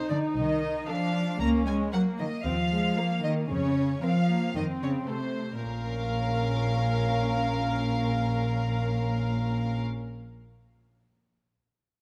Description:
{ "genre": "cinematic, playful, whimsical film cue", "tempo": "114 BPM", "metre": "4/4", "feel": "straight", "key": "Bb minor", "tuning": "A4 = 440 Hz", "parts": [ { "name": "rich studio violin section", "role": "melody", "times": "0.0-9.8 s", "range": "A4 to F5", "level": "-37 LUFS", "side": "equal", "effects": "none" }, { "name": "warm chamber violin section", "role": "second line", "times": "0.0-9.8 s", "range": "Bb4 to Bb5", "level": "-38 LUFS", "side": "equal", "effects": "none" }, { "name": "dark studio viola section", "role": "accompaniment", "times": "0.0-9.8 s", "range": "Ab3 to Bb4", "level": "-35 LUFS", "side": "equal", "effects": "none" }, { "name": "dark studio cello section", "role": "bass", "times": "0.1-9.8 s", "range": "Bb2 to Bb3", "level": "-32 LUFS", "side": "equal", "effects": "none" }, { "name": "dark studio double bass section", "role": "bass", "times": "0.4-9.8 s", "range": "Bb1 to F2", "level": "-33 LUFS", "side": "equal", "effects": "none" } ], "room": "light reverb", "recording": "close, detailed microphones", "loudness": "-28 LUFS", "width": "mono", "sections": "0.0-5.6 A section; 5.6-9.8 B section", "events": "none", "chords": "0.0 Adim/C; 1.4 Bbm/Db; 2.4 Absus2/Eb; 3.5 Bbm/F; 4.6 F; 5.6 Bbm" }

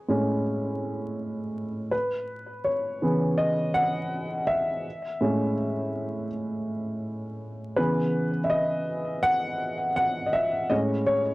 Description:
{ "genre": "hip hop", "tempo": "82 BPM", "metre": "4/4", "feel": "swing 56% on 16ths", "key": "C# minor", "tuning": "A4 = 440 Hz", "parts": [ { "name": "dark upright piano", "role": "solo", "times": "0.0-11.3 s", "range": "A2 to F#5", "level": "-24 LUFS", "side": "equal", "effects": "cassette tape" } ], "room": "moderate small room reverb, RT60 0.5 s", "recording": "worn, warbling old tape, cassette tape, vinyl crackle, warbly pitch drift", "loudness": "-24 LUFS", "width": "side -20 dB against mid", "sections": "0.0-7.8 A section; 7.8-11.3 B section", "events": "upright piano solo 0.0-7.8, 7.8-11.3", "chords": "0.0 Amaj7; 1.9 C#m7; 4.9 Amaj7; 7.8 C#m11; 10.7 Amaj7" }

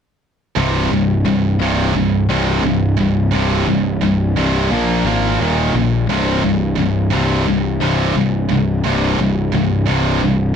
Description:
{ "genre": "metal", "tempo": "87 BPM", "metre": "4/4", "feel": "straight", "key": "C minor", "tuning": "A4 = 441 Hz", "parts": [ { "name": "heavy high-gain guitar", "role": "riff", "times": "0.6-10.5 s", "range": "C2 to Bb3", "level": "-18 LUFS", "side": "left 9 dB", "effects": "distortion" }, { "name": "heavy high-gain guitar", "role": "riff", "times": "0.6-10.5 s", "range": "C2 to Bb3", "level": "-19 LUFS", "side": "right 11 dB", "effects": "distortion" }, { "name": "fuzz picked electric bass", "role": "bass", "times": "0.6-10.6 s", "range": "C1 to Bb1", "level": "-19 LUFS", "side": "right 1 dB", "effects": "overdrive" } ], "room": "little or no reverb", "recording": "dry, close 1970s-style studio recording", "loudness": "-14 LUFS", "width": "side -7 dB against mid", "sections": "0.6-10.6 A section", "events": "none", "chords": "0.6 C5; 4.7 Bb5; 5.4 Eb5; 6.1 C5" }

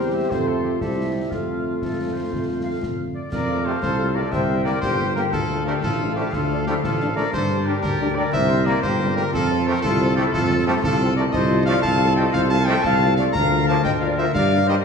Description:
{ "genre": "military-style march for wind band", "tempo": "120 BPM (dotted quarters)", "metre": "6/8", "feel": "straight", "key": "F major", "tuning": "A4 = 438 Hz", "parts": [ { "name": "clear cornet", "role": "melody", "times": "0.0-14.8 s", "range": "F4 to Bb5", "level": "-26 LUFS", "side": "left 1 dB", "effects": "none" }, { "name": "clear woodwind section", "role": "second line", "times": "0.0-14.8 s", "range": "F4 to G5", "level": "-29 LUFS", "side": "left 2 dB", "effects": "none" }, { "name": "warm euphonium", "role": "second line", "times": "0.0-3.1 s", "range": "A3 to C4", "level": "-30 LUFS", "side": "right 4 dB", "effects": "none" }, { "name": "warm French horn section", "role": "accompaniment", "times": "0.0-14.7 s", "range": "F3 to G4", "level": "-29 LUFS", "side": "left 3 dB", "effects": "none" }, { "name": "dark tuba", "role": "bass", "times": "0.0-14.8 s", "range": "G1 to G2", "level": "-23 LUFS", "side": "right 2 dB", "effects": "none" }, { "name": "concert snare drum, concert bass drum and clash cymbals", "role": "drums", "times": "0.3-14.8 s", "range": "none", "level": "-30 LUFS", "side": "left 2 dB", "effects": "none" }, { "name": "small flute group", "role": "second line", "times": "3.3-14.8 s", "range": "E4 to F5", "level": "-26 LUFS", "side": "left 2 dB", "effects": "none" }, { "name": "clear trombone section", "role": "sustained chords", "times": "3.7-14.7 s", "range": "C3 to D4", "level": "-29 LUFS", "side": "right 1 dB", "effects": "none" } ], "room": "wet scoring stage reverb, RT60 1.7 s", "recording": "studio reverb", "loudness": "-18 LUFS", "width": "side -6 dB against mid", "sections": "0.0-3.3 A section; 3.3-14.8 B section", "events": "none", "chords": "0.3 F; 0.8 C; 1.3 F; 4.3 C7; 5.3 Dm; 7.3 Gm; 8.3 C7; 9.3 F/C; 13.3 Bb/D; 14.3 Gm" }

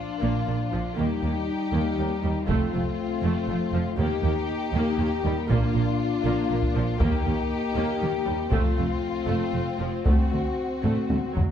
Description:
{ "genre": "cinematic, epic orchestral film score", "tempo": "79 BPM (dotted quarters)", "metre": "6/8", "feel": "straight", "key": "unclear", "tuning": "A4 = 441 Hz", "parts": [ { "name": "warm symphonic violin section", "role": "melody", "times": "0.0-11.4 s", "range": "F4 to G4", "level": "-33 LUFS", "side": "left 6 dB", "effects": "none" }, { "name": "warm symphonic violin section", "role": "second line", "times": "0.0-11.4 s", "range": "C4 to Eb4", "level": "-34 LUFS", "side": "left 5 dB", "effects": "none" }, { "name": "dark French horn section", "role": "sustained chords", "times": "0.0-11.4 s", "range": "F3 to G4", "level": "-30 LUFS", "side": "left 4 dB", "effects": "none" }, { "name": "rich symphonic viola section", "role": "accompaniment", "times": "0.2-11.4 s", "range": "F3 to Bb3", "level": "-32 LUFS", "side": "equal", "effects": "none" }, { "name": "rich symphonic cello section", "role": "bass", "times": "0.2-11.5 s", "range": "D2 to Bb2", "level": "-30 LUFS", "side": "right 3 dB", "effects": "none" }, { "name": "rich symphonic double bass section", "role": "bass", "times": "0.2-11.4 s", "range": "F1 to Eb2", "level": "-29 LUFS", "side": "right 3 dB", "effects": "none" }, { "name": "taiko ensemble", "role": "drums", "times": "2.5-11.5 s", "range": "none", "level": "-26 LUFS", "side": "equal", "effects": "none" } ], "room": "wet scoring stage reverb, RT60 1.4 s", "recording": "dark, warm production", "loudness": "-23 LUFS", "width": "side -9 dB against mid", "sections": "0.0-11.5 A section", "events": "drum fill 10.8-11.5", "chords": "0.0 Bb; 1.0 Eb; 2.5 F; 4.0 Eb; 5.5 Bb; 7.0 Eb; 8.5 F; 10.1 D7" }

